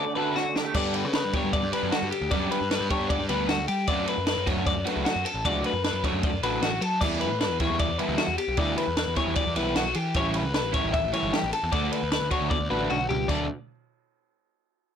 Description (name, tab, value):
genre	math rock and midwest emo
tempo	153 BPM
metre	4/4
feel	straight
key	D major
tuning	A4 = 440 Hz
part	electric guitar through a small old amp	accompaniment	0.0-2.3 s	D2 to C#4	-34 LUFS	right 6 dB	ensemble chorus
part	twelve-string electric guitar	arpeggios	0.0-13.5 s	F#4 to E5	-28 LUFS	left 5 dB	none
part	overdriven semi-hollow guitar	riff	0.0-13.5 s	D3 to A4	-29 LUFS	right 1 dB	none
part	compact cocktail drum kit	drums	0.4-13.4 s	crash cymbal, kick drum, ride cymbal, snare drum, toms	-29 LUFS	right 1 dB	none
part	fuzz picked electric bass	bass	0.7-13.5 s	G1 to G3	-31 LUFS	equal	overdrive
room	light reverb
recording	blown-out, overdriven recording, overdrive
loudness	-23 LUFS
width	side -8 dB against mid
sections	0.8-13.3 A section; 13.3-14.9 B section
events	break 0.0-0.8; drum fill 0.4-0.8, 12.5-13.3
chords	0.0 Dmaj7; 0.8 Gmaj7; 3.9 Dmaj7; 7.0 Em7; 10.2 A7; 11.7 Dmaj7; 13.3 N.C.